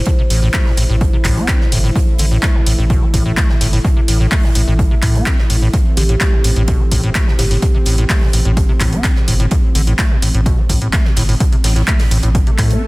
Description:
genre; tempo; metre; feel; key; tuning
acid house; 127 BPM; 4/4; straight; A minor; A4 = 440 Hz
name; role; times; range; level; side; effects
warm analog pad; sustained chords; 0.0-12.8 s; E3 to E4; -26 LUFS; left 1 dB; chorus, sidechain pumping
saturated sub bass; bass; 0.0-12.8 s; G1 to A2; -16 LUFS; equal; sidechain pumping
acid bass, square; riff; 0.1-12.8 s; G2 to C4; -20 LUFS; equal; tube saturation, analog chorus, cassette tape, sidechain pumping
big rock drum kit; drums; 0.1-12.8 s; hi-hat, snare drum; -31 LUFS; right 2 dB; sidechain pumping on hats, high-pass filter on hats, studio reverb, high-pass filter on snare, high-pass filter on room
electronic kick drum; drums; 0.1-12.7 s; none; -14 LUFS; equal; studio reverb
punchy analog drum machine; drums; 0.3-12.8 s; handclaps, hi-hat; -21 LUFS; equal; overdrive, studio reverb
kalimba; melody; 6.0-8.1 s; G4; -28 LUFS; right 1 dB; vintage 12-bit sampler grit, tape echo
swell; sound effects; 12.5-12.9 s; none; -24 LUFS; left 4 dB; none
room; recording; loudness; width
small room ambience; dense, heavily limited modern master; -12 LUFS; side -22 dB against mid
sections
0.0-12.9 A section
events
swell 12.5-12.9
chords
0.0 A5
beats
| 0.07 0.54 1.01 1.48 | 1.96 2.43 2.90 3.37 | 3.85 4.32 4.79 5.26 | 5.74 6.21 6.68 7.15 | 7.62 8.10 8.57 9.04 | 9.52 9.99 10.46 10.93 | 11.40 11.88 12.35 12.82

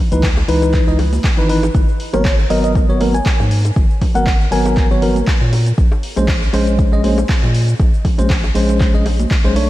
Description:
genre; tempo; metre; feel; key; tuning
deep house; 119 BPM; 4/4; swing 55% on 16ths; unclear; A4 = 440 Hz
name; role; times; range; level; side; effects
bell-like tine electric piano; stabs; 0.1-9.7 s; E3 to D#5; -19 LUFS; equal; fast stereo tremolo, sidechain pumping, low-pass filter, diffuse ambient delay
round analog bass; bass; 0.1-9.7 s; G#1 to A#2; -17 LUFS; equal; sidechain pumping
punchy analog drum machine; drums; 0.1-9.7 s; handclaps, hi-hat, shaker; -26 LUFS; equal; none
congas and bongos; percussion; 0.1-9.4 s; none; -26 LUFS; right 2 dB; none
electronic kick drum; drums; 0.2-9.4 s; none; -15 LUFS; equal; overdrive
bell-like FM electric piano; melody; 2.1-4.9 s; C#5 to G#5; -22 LUFS; left 1 dB; chorus, tremolo, analog delay
room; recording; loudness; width
light reverb; vinyl crackle; -12 LUFS; side -16 dB against mid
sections
0.0-9.7 A section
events
none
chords
0.0 C#m9; 1.7 G#m9; 5.5 A#m9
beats
0.23 0.74 1.24 | 1.75 2.25 2.75 3.26 | 3.76 4.27 4.77 5.28 | 5.78 6.28 6.79 7.29 | 7.80 8.30 8.80 9.31

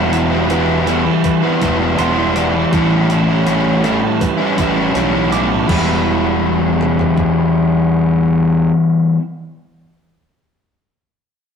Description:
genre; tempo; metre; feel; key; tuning
rock, shoegaze and dream pop; 81 BPM; 4/4; straight; E minor; A4 = 440 Hz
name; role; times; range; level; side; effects
direct-recorded clean electric guitar; arpeggios; 0.0-6.6 s; E4 to D6; -25 LUFS; right 5 dB; none
crunchy overdriven guitar; riff; 0.0-9.2 s; A2 to E4; -16 LUFS; left 5 dB; none
overdriven semi-hollow guitar; riff; 0.0-9.2 s; A2 to E4; -18 LUFS; right 5 dB; none
fuzz fingered electric bass; bass; 0.0-8.7 s; E1 to B1; -20 LUFS; right 1 dB; overdrive
clean 12-bit digital drum machine; drums; 0.1-7.3 s; crash cymbal, hi-hat, kick drum, toms; -22 LUFS; equal; overdrive
room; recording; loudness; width
wet stone room reverb, RT60 1.4 s; rough rehearsal-room recording, warm saturation; -12 LUFS; side -7 dB against mid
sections
0.0-5.7 A section; 5.7-8.7 B section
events
none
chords
0.0 Em7; 2.7 A9; 5.7 Em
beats
0.50 1.24 1.98 | 2.72 3.46 4.21 4.95 | 5.69 6.43 7.18 7.92

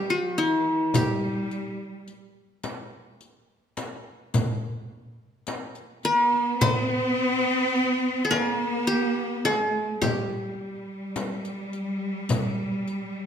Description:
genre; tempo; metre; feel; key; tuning
Arabic maqam ensemble; 106 BPM (eighths); 10/8; straight; G maqam huzam; A4 = 440 Hz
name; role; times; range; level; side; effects
qanun; melody; 0.0-13.3 s; E4-50c to C5-40c; -25 LUFS; equal; none
rich symphonic cello section; second line; 0.0-13.3 s; E3-50c to C4-40c; -27 LUFS; equal; none
riq; percussion; 0.1-13.0 s; none; -38 LUFS; left 5 dB; none
darbuka; percussion; 0.7-13.0 s; none; -31 LUFS; right 3 dB; none
frame drum; percussion; 0.9-12.6 s; none; -30 LUFS; left 5 dB; none
room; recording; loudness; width
wet recital hall reverb, RT60 1.5 s; minimal, uncompressed stereo recording; -23 LUFS; side -8 dB against mid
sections
0.0-13.3 A section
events
none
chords
none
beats
0.37 | 0.94 1.50 2.07 2.64 3.21 3.78 4.34 4.91 5.48 6.05 | 6.62 7.18 7.75 8.32 8.89 9.46 10.03 10.59 11.16 11.73 | 12.30 12.87

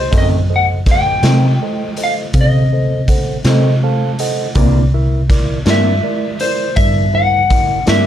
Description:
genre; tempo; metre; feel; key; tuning
slow blues; 54 BPM (dotted quarters); 12/8; straight; unclear; A4 = 440 Hz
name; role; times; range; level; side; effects
electric slide guitar; melody; 0.0-8.1 s; C5 to G5; -17 LUFS; left 3 dB; none
overdriven tine electric piano; accompaniment; 0.0-8.1 s; E4 to A5; -23 LUFS; right 3 dB; phaser
vintage muted fingered electric bass; bass; 0.0-8.1 s; C2 to C3; -15 LUFS; equal; none
electric guitar through a small old amp; accompaniment; 0.1-8.1 s; F#2 to D4; -19 LUFS; left 2 dB; harmonic tremolo
raw garage drum kit; drums; 0.1-8.0 s; hi-hat, kick drum, snare drum; -17 LUFS; equal; none
room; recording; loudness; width
light reverb; dark, warm production; -12 LUFS; side -10 dB against mid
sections
0.0-8.1 A section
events
tine electric piano fill 3.4-4.6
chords
0.1 F#dim7; 4.6 C9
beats
| 0.13 1.24 2.34 3.45 | 4.55 5.66 6.76 7.87

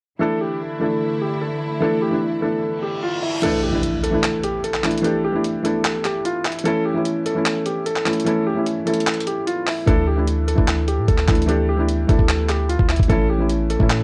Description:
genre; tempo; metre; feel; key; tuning
hip hop, trap; 149 BPM; 4/4; half-time; unclear; A4 = 444 Hz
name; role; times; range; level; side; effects
dark concert grand piano; melody; 0.2-14.0 s; E4 to A4; -26 LUFS; equal; low-pass filter, analog delay
felt-muted upright piano; accompaniment; 0.2-14.0 s; E3 to G4; -24 LUFS; equal; low-pass filter
rich studio string section; sustained chords; 0.2-3.4 s; D3 to E4; -31 LUFS; equal; none
reverse cymbal and impact; sound effects; 2.8-5.0 s; none; -32 LUFS; equal; none
breakbeat sampler-style drum kit; drums; 3.4-14.0 s; crash cymbal, handclaps, hi-hat, kick drum; -23 LUFS; equal; none
long sustained 808-style bass; bass; 9.9-14.0 s; A1 to A2; -23 LUFS; equal; none
room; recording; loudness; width
little or no reverb; none; -20 LUFS; mono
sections
0.2-3.4 A section; 3.4-14.0 B section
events
reverse cymbal 2.8-3.4; kick muted 3.4-9.9; impact 3.4-5.0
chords
0.2 Dsus2; 6.7 A; 9.9 Dsus2; 13.1 A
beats
| 0.21 0.61 1.01 1.42 | 1.82 2.22 2.63 3.03 | 3.43 3.83 4.24 4.64 | 5.04 5.45 5.85 6.25 | 6.65 7.05 7.46 7.86 | 8.26 8.67 9.07 9.47 | 9.87 10.28 10.68 11.08 | 11.48 11.89 12.29 12.69 | 13.10 13.50 13.90

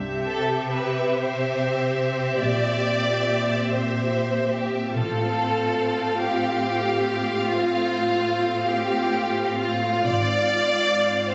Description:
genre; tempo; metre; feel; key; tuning
classical, slow romantic movement for string orchestra; 41-50 BPM (dotted quarters); 12/8; rubato; unclear; A4 = 440 Hz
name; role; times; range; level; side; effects
rich studio violin section; melody; 0.0-11.3 s; E5 to F5; -33 LUFS; equal; none
warm studio viola section; accompaniment; 0.0-11.3 s; C4 to G4; -31 LUFS; equal; none
rich studio cello section; bass; 0.0-11.3 s; Ab2 to C3; -32 LUFS; equal; none
rich studio double bass section; bass; 0.0-10.8 s; Ab1 to C2; -32 LUFS; equal; none
rich studio violin section; second line; 0.3-11.3 s; F4 to D5; -26 LUFS; equal; none
room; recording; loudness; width
moderate recital hall reverb, RT60 1.4 s; recorded on a phone in the room, club reverb, compression, nothing above 7.9 kHz; -23 LUFS; mono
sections
0.0-11.3 A section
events
none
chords
0.0 C; 2.4 C7/Bb; 4.9 F/A; 10.0 Fm/Ab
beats
1.15 2.41 3.69 | 4.95 6.20 7.46 8.67 | 10.05 11.28

